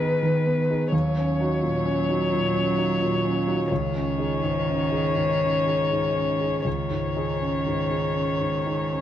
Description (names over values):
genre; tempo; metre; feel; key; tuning
neoclassical piano and strings; 39-44 BPM (dotted quarters); 6/8; rubato; unclear; A4 = 440 Hz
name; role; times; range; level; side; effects
muted violin; melody; 0.0-9.0 s; Cb5 to Db5; -26 LUFS; left 4 dB; none
muted cello; second line; 0.0-9.0 s; Eb3 to Gb3; -28 LUFS; right 4 dB; none
warm concert grand piano; accompaniment; 0.0-9.0 s; Db2 to Ab4; -25 LUFS; right 1 dB; none
room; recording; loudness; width
moderate plate reverb, RT60 3.3 s; nothing above 10.3 kHz; -22 LUFS; side -11 dB against mid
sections
0.0-9.0 A section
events
none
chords
0.0 Abm; 0.9 Ebm7; 3.7 Dbsus2